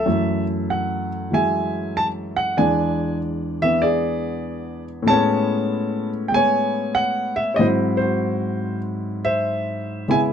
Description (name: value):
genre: solo jazz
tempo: 96 BPM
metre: 4/4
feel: swing 66% on 8ths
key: F# minor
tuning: A4 = 440 Hz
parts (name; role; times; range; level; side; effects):
- warm baby grand piano; solo; 0.0-10.3 s; E2 to A5; -19 LUFS; equal; none
room: little or no reverb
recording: close, detailed microphones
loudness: -19 LUFS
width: side -8 dB against mid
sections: 0.1-10.3 A section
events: none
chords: 0.1 F#m9; 2.6 E7; 5.1 Amaj9; 7.6 G#7b13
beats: | 0.06 0.69 1.31 1.94 | 2.57 3.20 3.83 4.45 | 5.08 5.71 6.33 6.96 | 7.58 8.21 8.83 9.46 | 10.08